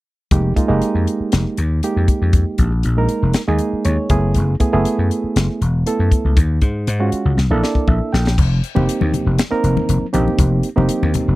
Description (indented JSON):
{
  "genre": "electric jazz fusion",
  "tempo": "119 BPM",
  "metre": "4/4",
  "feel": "straight",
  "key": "unclear",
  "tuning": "A4 = 439 Hz",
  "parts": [
    { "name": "barky reed electric piano", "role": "accompaniment", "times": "0.3-11.4 s", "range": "Ab3 to G5", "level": "-19 LUFS", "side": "right 3 dB", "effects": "overdrive" },
    { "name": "vintage slap bass", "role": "bass", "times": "0.3-11.4 s", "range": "Fb1 to Ab2", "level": "-16 LUFS", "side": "left 1 dB", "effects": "none" },
    { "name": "crisp fusion drum kit", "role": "drums", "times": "0.3-11.3 s", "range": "crash cymbal, hi-hat, kick drum, snare drum", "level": "-18 LUFS", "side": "left 1 dB", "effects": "none" },
    { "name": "congas", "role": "percussion", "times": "8.8-11.3 s", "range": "none", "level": "-23 LUFS", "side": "left 6 dB", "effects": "none" }
  ],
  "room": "little or no reverb",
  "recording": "dry, close 1970s-style studio recording",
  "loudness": "-15 LUFS",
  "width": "side -18 dB against mid",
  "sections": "0.3-8.4 A section; 8.4-11.4 B section",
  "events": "reed electric piano fill 3.6-4.4, 7.4-8.4; drum fill 7.4-8.4",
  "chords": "0.3 Fm11; 4.1 Gbm11; 6.4 Ebm11; 7.4 C13; 8.4 F9sus4"
}